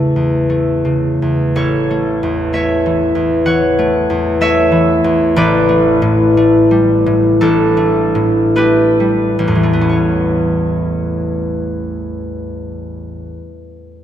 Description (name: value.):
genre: classical, solo harp piece.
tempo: 42-65 BPM.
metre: 4/4.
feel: rubato.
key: A mixolydian.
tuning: A4 = 440 Hz.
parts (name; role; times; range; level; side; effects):
concert harp; solo; 0.0-13.5 s; A1 to F#5; -12 LUFS; equal; none.
room: wet cathedral reverb, RT60 4.6 s.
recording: none.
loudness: -11 LUFS.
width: side -10 dB against mid.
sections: 0.0-1.5 A section; 1.5-9.9 B section; 9.9-14.0 C section.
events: slowing down 0.0-9.9.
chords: 0.0 A; 5.4 Gadd9/A; 9.9 Aadd9.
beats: 0.48 | 1.54 2.53 3.46 4.41 | 5.36 6.36 7.40 8.56 | 9.88 11.03 12.21 13.40.